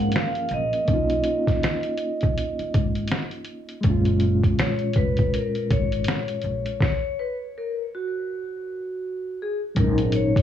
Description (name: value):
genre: lo-fi hip hop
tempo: 81 BPM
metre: 4/4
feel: swing 61% on 16ths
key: F# major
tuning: A4 = 440 Hz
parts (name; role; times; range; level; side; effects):
- vibraphone with medium hard mallets; melody; 0.0-10.4 s; F#4 to F#5; -27 LUFS; left 1 dB; low-pass filter, tape echo
- mellow reed electric piano; accompaniment; 0.0-10.4 s; A#2 to A#4; -26 LUFS; left 1 dB; fast tremolo, cassette tape, low-pass filter
- upright bass; bass; 0.0-10.4 s; E#1 to B1; -26 LUFS; right 1 dB; none
- lo-fi sampler-style drum kit; drums; 0.1-10.4 s; finger snaps, hi-hat, kick drum, snare drum; -24 LUFS; equal; vintage 12-bit sampler grit
room: light reverb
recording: cassette tape, small room reverb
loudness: -22 LUFS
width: side -10 dB against mid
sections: 0.0-9.8 A section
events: stop 6.8-9.8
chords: 0.0 F#maj9 (rootless); 0.9 Bmaj9#11 (rootless); 3.8 F#maj9; 6.8 N.C.; 9.8 G#7sus4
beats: 0.14 | 0.88 1.62 2.36 3.10 | 3.85 4.59 5.33 6.07 | 6.81 7.55 8.29 9.03 | 9.77